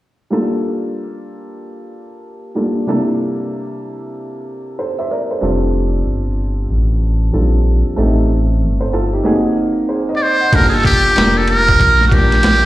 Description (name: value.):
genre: hip hop, jazz-hop.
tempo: 94 BPM.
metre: 4/4.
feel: swing 62% on 16ths.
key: G dorian.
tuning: A4 = 440 Hz.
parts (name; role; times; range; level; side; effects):
dark upright piano; accompaniment; 0.3-12.7 s; C3 to Gb5; -18 LUFS; equal; none.
saturated sub bass; bass; 5.4-12.7 s; F1 to Bb1; -15 LUFS; equal; none.
trumpet with metal mute; melody; 10.2-12.7 s; F#4 to D5; -12 LUFS; right 1 dB; slapback echo.
boom bap sampler-style drum kit; drums; 10.5-12.6 s; crash cymbal, hi-hat, kick drum, ride cymbal, snare drum; -16 LUFS; equal; none.
room: digital ambience.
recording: live gig heard through the venue's PA, recital hall reverb.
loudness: -13 LUFS.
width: side -16 dB against mid.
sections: 0.3-10.5 A section; 10.5-12.7 B section.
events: none.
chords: 0.3 Gm9; 2.9 C13; 5.4 F69; 8.0 Am7b5; 9.3 Ab9; 10.5 Gm9.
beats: | 0.31 0.95 1.59 2.23 | 2.87 3.51 4.14 4.78 | 5.42 6.06 6.70 7.34 | 7.97 8.61 9.25 9.89 | 10.53 11.16 11.80 12.44.